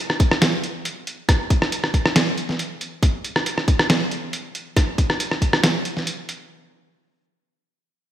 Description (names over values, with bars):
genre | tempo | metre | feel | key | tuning
deep dubstep | 138 BPM | 4/4 | half-time | none | none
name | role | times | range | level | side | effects
trip hop sampler-style drum kit | drums | 0.1-6.4 s | hi-hat, rim click, snare drum | -20 LUFS | equal | overdrive, studio reverb
electronic kick drum | drums | 0.2-5.5 s | none | -19 LUFS | equal | studio reverb
room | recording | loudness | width
moderate lush hall reverb, RT60 1.6 s, digital ambience | bright 1980s-style digital production | -19 LUFS | side -11 dB against mid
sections
0.0-6.5 A section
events
none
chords
none